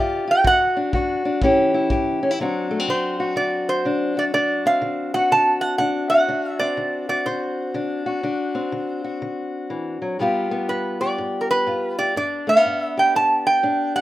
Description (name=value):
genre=acoustic country blues, solo or duo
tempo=123 BPM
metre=4/4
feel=swing 64% on 8ths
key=D mixolydian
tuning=A4 = 437 Hz
part: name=metal-body resonator slide guitar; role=melody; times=0.0-14.0 s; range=Bb4 to A5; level=-19 LUFS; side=right 1 dB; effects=none
part: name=fingerpicked steel-string acoustic guitar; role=accompaniment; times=0.0-14.0 s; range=G2 to G4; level=-22 LUFS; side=left 2 dB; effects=none
part: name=kick drum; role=drums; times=0.4-2.0 s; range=none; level=-25 LUFS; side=equal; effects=none
room=light reverb, small room reverb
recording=rough home demo mix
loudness=-18 LUFS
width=side -15 dB against mid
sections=0.0-2.4 A section; 2.4-14.0 B section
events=resonator guitar played with a steel bar solo 0.0-2.4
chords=0.4 D; 1.4 A7; 2.4 D7; 10.2 G7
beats=| 0.45 0.93 1.42 1.90 | 2.39 2.87 3.36 3.85 | 4.33 4.82 5.30 5.79 | 6.28 6.76 7.25 7.74 | 8.23 8.72 9.21 9.70 | 10.19 10.68 11.17 11.66 | 12.15 12.64 13.14 13.63